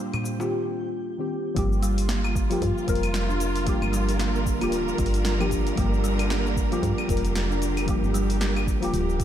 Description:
organic downtempo; 114 BPM; 4/4; swing 59% on 16ths; G minor pentatonic; A4 = 441 Hz
deep mellow chord stab; accompaniment; 0.0-9.2 s; Eb3 to Bb4; -30 LUFS; left 2 dB; chorus, sidechain pumping, ping-pong delay, slapback echo
warm studio string section; sustained chords; 0.0-9.2 s; D3 to C5; -32 LUFS; right 2 dB; sidechain pumping
kalimba; arpeggios; 0.0-9.2 s; G3 to F4; -29 LUFS; equal; ping-pong delay
twinkling granular texture; texture; 0.0-0.5 s; G4 to G5; -50 LUFS; right 1 dB; built-in reverb
deep house drum kit; drums; 0.1-9.2 s; cabasa, claves, hi-hat, snare drum; -33 LUFS; left 1 dB; overdrive
darbuka; percussion; 0.1-0.5 s; -34 LUFS; left 1 dB
woody FM bass; bass; 1.6-9.2 s; D1 to G2; -26 LUFS; equal; tube saturation
electronic kick drum; drums; 1.6-9.2 s; -28 LUFS; equal; overdrive
moderate concert hall reverb, RT60 1.8 s, digital ambience; big arena sound; -22 LUFS; side -10 dB against mid
0.0-1.6 A section; 1.6-9.2 B section
0.0 Cm; 1.6 Gm7
0.51 1.04 | 1.56 2.09 2.62 3.14 | 3.67 4.20 4.72 5.25 | 5.77 6.30 6.83 7.35 | 7.88 8.40 8.93

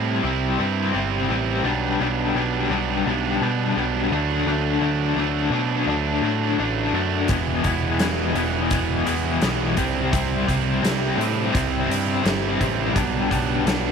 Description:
classic rock; 85 BPM; 4/4; straight; A4 = 439 Hz
biting overdriven guitar; riff; 0.0-13.9 s; E2 to D4; -24 LUFS; left 12 dB; tremolo
cranked stack guitar; riff; 0.0-13.9 s; B2 to E4; -24 LUFS; right 13 dB; overdrive
growling picked electric bass; bass; 0.0-13.9 s; E1 to B2; -26 LUFS; equal; overdrive
huge arena drum kit; drums; 7.3-13.8 s; hi-hat, kick drum, snare drum; -25 LUFS; equal
small room ambience; 1960s-style stereo with parts hard left and right; -20 LUFS; side -6 dB against mid
0.0-13.9 A section
0.0 C; 1.6 G/B; 4.1 D; 7.3 E; 9.8 C; 12.9 G/B
0.23 0.94 | 1.65 2.35 3.06 3.76 | 4.47 5.18 5.88 6.59 | 7.29 8.00 8.71 9.41 | 10.12 10.82 11.53 12.23 | 12.94 13.65

